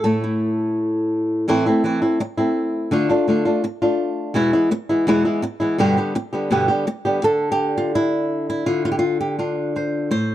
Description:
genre	flamenco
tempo	167 BPM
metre	4/4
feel	straight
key	unclear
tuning	A4 = 441 Hz
part	flamenco guitar	solo	0.0-10.3 s	E2 to C5	-18 LUFS	equal	none
room	small room ambience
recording	dry, close 1970s-style studio recording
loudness	-18 LUFS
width	side -13 dB against mid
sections	0.0-1.5 A section; 1.5-7.2 B section; 7.2-10.3 C section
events	none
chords	0.0 A5; 1.5 Am; 2.9 Dm; 4.4 E; 5.8 G; 7.2 Dm

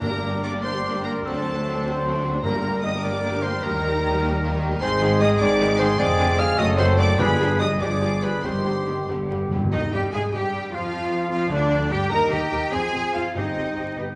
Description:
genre	quick classical-period movement for symphony orchestra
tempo	93-103 BPM (dotted quarters)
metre	6/8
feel	rubato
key	G minor, C minor from 4.8 s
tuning	A4 = 438 Hz
part	rich studio violin section	melody	0.0-14.0 s	D5 to F6	-34 LUFS	equal	none
part	clear studio violin section	second line	0.0-14.0 s	Bb3 to Bb5	-35 LUFS	equal	none
part	warm clarinet	second line	0.0-14.1 s	D4 to F5	-32 LUFS	equal	none
part	warm oboe	second line	0.0-14.2 s	D4 to Bb5	-34 LUFS	equal	none
part	clear studio viola section	accompaniment	0.0-14.1 s	D3 to Bb4	-32 LUFS	equal	none
part	mellow French horn section	sustained chords	0.0-14.2 s	D3 to G4	-34 LUFS	equal	none
part	dark trumpet section	stabs	0.0-9.5 s	G4 to D5	-30 LUFS	equal	none
part	bright studio cello section	bass	0.0-14.0 s	D2 to Bb4	-30 LUFS	equal	none
part	clear chamber double bass section	bass	0.0-14.1 s	F1 to Ab2	-31 LUFS	equal	none
part	timpani	percussion	0.0-3.0, 7.2-10.3, 13.4-13.9 s	G2 to C3	-33 LUFS	equal	none
part	bright flute section	second line	9.7-14.0 s	D5 to Bb5	-34 LUFS	equal	none
room	wet recital hall reverb, RT60 1.6 s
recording	recorded in a church or concert hall, vinyl crackle, nothing above 10.3 kHz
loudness	-22 LUFS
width	mono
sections	0.0-9.7 A section; 9.7-14.2 B section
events	timpani fill 9.1-9.7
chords	0.0 Gm; 1.3 D7; 2.4 Gm; 3.6 Eb; 4.8 Ab; 6.0 Dm7b5/F; 6.6 F#dim; 7.2 G7b9; 8.4 Cm/G; 9.1 G; 9.7 Fm9/Eb; 10.9 Dmadd11; 12.1 Eb; 12.7 Fm; 13.4 Cm/G

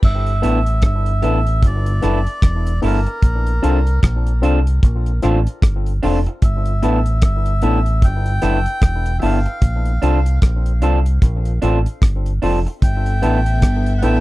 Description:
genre	lovers rock reggae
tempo	75 BPM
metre	4/4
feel	swing 60% on 16ths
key	G major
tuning	A4 = 438 Hz
part	melodica	melody	0.0-14.2 s	Bb4 to G5	-26 LUFS	right 1 dB	tape echo
part	deep dub fingered electric bass	bass	0.0-14.2 s	E1 to C2	-17 LUFS	equal	tube saturation
part	cloth-damped thuddy drum kit	drums	0.0-14.2 s	crash cymbal, hi-hat, kick drum, rim click	-13 LUFS	equal	none
part	barky tine electric piano	accompaniment	0.4-14.2 s	B3 to A4	-24 LUFS	left 6 dB	tape echo
part	electric guitar through a small old amp	stabs	0.4-14.2 s	B3 to A4	-21 LUFS	right 6 dB	none
part	warm studio string section	second line	12.8-14.2 s	B3 to E5	-26 LUFS	left 1 dB	none
room	little or no reverb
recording	dry, close 1970s-style studio recording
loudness	-14 LUFS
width	side -18 dB against mid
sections	0.0-14.2 A section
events	none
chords	0.0 G69; 3.2 Bbmaj7; 6.4 G69; 9.6 Bbmaj7; 12.8 G69

